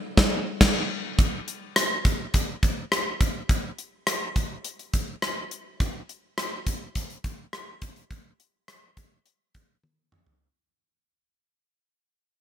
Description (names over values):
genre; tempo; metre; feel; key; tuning
pop; 104 BPM; 4/4; straight; none; none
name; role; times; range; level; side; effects
gated 80s drum kit; drums; 0.2-10.4 s; crash cymbal, hi-hat, kick drum, rim click, snare drum, toms; -23 LUFS; equal; gated reverb
room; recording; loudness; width
light reverb; bright 1980s-style digital production; -24 LUFS; side -10 dB against mid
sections
0.0-1.2 A section; 1.2-10.4 B section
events
band accent 0.0-1.2; fade-out 1.2-10.4; drum fill 9.8-10.4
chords
none